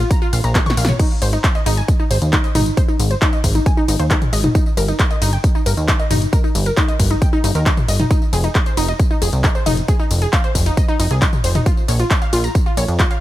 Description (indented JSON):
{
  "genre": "uplifting trance",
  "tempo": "135 BPM",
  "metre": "4/4",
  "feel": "straight",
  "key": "F minor",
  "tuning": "A4 = 440 Hz",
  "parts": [
    { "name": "wide unison pluck", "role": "arpeggios", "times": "0.0-13.2 s", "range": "Eb4 to Db6", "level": "-22 LUFS", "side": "equal", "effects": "sidechain pumping, digital delay" },
    { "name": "plucky analog bass", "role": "bass", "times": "0.0-13.0 s", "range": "F1 to F2", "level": "-18 LUFS", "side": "equal", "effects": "sidechain pumping" },
    { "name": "punchy analog drum machine", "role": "drums", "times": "0.0-13.2 s", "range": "crash cymbal, handclaps, hi-hat, ride cymbal, snare drum, tambourine, toms", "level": "-22 LUFS", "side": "left 1 dB", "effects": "none" },
    { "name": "electronic kick drum", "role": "drums", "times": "0.1-13.1 s", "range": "none", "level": "-16 LUFS", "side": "equal", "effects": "overdrive" }
  ],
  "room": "digital ambience",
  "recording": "none",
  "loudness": "-14 LUFS",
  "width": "side -15 dB against mid",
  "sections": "0.0-13.2 A section",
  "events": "drum fill 0.6-1.0",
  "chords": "0.0 Bbm; 1.0 Ab5; 4.5 Eb/G; 8.1 F7(no3); 11.7 Bb5"
}